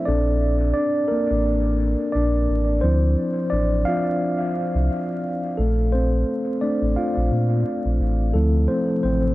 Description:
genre	hip hop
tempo	87 BPM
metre	4/4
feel	swing 56% on 16ths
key	unclear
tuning	A4 = 440 Hz
part	mellow tine electric piano	accompaniment	0.0-9.3 s	F3 to F5	-21 LUFS	equal	medium stereo tremolo, cassette tape, low-pass filter, dub echo
part	sub bass with octave	bass	0.1-9.3 s	A1 to Bb2	-20 LUFS	equal	none
part	deep dark ambient pad	sustained chords	8.9-9.3 s	C3 to E4	-30 LUFS	left 2 dB	chorus, built-in reverb, low-pass filter
room	light reverb, digital ambience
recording	echo-heavy mix, vinyl crackle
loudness	-19 LUFS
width	side -17 dB against mid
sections	0.0-9.3 A section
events	tine electric piano solo 0.0-9.3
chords	0.1 Bbmaj7; 2.8 Dm9; 5.6 Bbmaj7; 8.4 Dm9

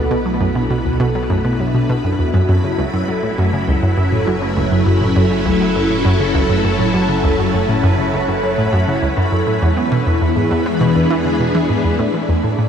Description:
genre	ambient, sequencer-driven space music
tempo	101 BPM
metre	4/4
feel	straight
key	unclear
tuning	A4 = 439 Hz
part	phased string machine	sustained chords	0.0-12.7 s	B2 to A4	-18 LUFS	left 1 dB	ensemble chorus, phaser
part	vibraphone with soft mallets	arpeggios	0.0-12.7 s	G3 to B4	-23 LUFS	moving between left 2 dB and right 6 dB	auto-pan, ping-pong delay
part	analog pluck	riff	0.0-12.7 s	C#2 to B3	-17 LUFS	equal	chorus, ping-pong delay
part	analog drone	bass	0.0-12.0 s	F#1 to E2	-27 LUFS	equal	chorus, tube saturation
part	bubbling stepped-filter texture	texture	0.0-12.7 s	A4 to B5	-29 LUFS	right 1 dB	chorus, built-in reverb
room	moderate shimmer reverb, RT60 7.2 s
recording	none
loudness	-14 LUFS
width	side -8 dB against mid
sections	0.0-12.0 A section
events	fade-in on synth texture 0.0-12.0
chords	0.0 Bm7; 2.5 F#m7; 9.6 E7; 12.0 A7(no3)

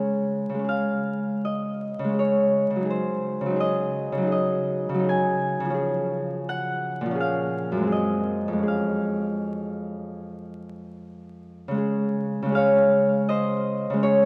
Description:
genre	classical, solo harp piece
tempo	76-86 BPM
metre	4/4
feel	rubato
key	Db major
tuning	A4 = 440 Hz
part	Celtic harp	solo	0.0-14.3 s	F2 to Ab5	-25 LUFS	equal	none
room	wet church reverb, RT60 3.6 s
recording	dark, warm production, vinyl crackle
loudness	-25 LUFS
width	mono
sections	0.0-11.8 A section; 11.8-14.3 B section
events	none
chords	0.0 Db; 2.9 Ab7/Db; 5.8 Db; 7.2 Bbm7; 7.9 Ab7/Gb; 8.7 Db/F; 11.8 Db

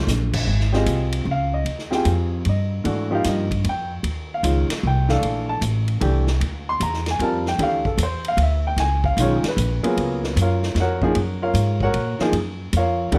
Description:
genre	modal jazz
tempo	152 BPM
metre	3/4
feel	swing 66% on 8ths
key	F# major from 10.0 s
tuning	A4 = 437 Hz
part	warm upright piano	accompaniment	0.0-13.2 s	Eb3 to C6	-25 LUFS	equal	none
part	upright bass	bass	0.0-13.2 s	Ab1 to A#2	-24 LUFS	equal	none
part	swinging big-band drum kit	drums	0.1-13.2 s	crash cymbal, hi-hat, kick drum, ride cymbal, snare drum	-32 LUFS	equal	none
room	light reverb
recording	none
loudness	-21 LUFS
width	mono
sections	0.5-10.0 A section; 10.0-13.2 A section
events	none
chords	0.5 Abmaj7; 5.2 Bbmaj9; 8.8 Db13; 10.0 F#maj9

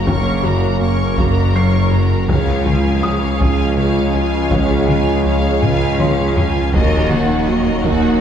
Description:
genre	cinematic, hybrid orchestral and electronic film score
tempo	54 BPM (dotted quarters)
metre	6/8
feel	straight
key	unclear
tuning	A4 = 439 Hz
part	warm symphonic violin section	melody	0.0-8.2 s	Eb5 to Db6	-25 LUFS	left 4 dB	none
part	warm symphonic violin section	second line	0.0-8.2 s	Gb4 to F5	-26 LUFS	left 2 dB	none
part	rich symphonic viola section	accompaniment	0.0-8.2 s	Eb4 to Bb4	-26 LUFS	right 1 dB	none
part	dark French horn section	sustained chords	0.0-8.2 s	Bb3 to Gb4	-28 LUFS	left 6 dB	none
part	glassy FM pad	sustained chords	0.0-8.2 s	Eb3 to Db5	-25 LUFS	equal	none
part	warm trombone section	sustained chords	0.0-8.2 s	Db3 to Bb3	-26 LUFS	right 2 dB	none
part	saturated sub bass	bass	0.0-8.2 s	Eb1 to Db2	-25 LUFS	equal	none
part	felt-muted upright piano	texture	0.0-8.2 s	Db5 to C7	-30 LUFS	left 1 dB	ping-pong delay
part	warbly dusty pluck	arpeggios	0.1-8.1 s	Db3 to Gb4	-30 LUFS	right 4 dB	none
part	rubbery square bass	riff	0.1-8.1 s	Db2 to Gb3	-24 LUFS	left 2 dB	none
part	clear symphonic double bass section	bass	0.1-8.2 s	Gb1 to Eb2	-23 LUFS	right 1 dB	none
part	dark tuba	bass	0.1-8.2 s	Gb1 to Eb2	-22 LUFS	right 3 dB	none
part	rich symphonic cello section	bass	0.1-8.2 s	Db2 to Gb2	-21 LUFS	right 1 dB	none
part	taiko ensemble	drums	0.1-8.2 s	none	-20 LUFS	equal	none
room	wet scoring stage reverb, RT60 1.8 s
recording	heard from further back in the room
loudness	-13 LUFS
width	side -8 dB against mid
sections	0.0-8.2 A section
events	drum fill 5.6-6.7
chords	0.0 Gb; 2.3 Db; 6.7 Ebm

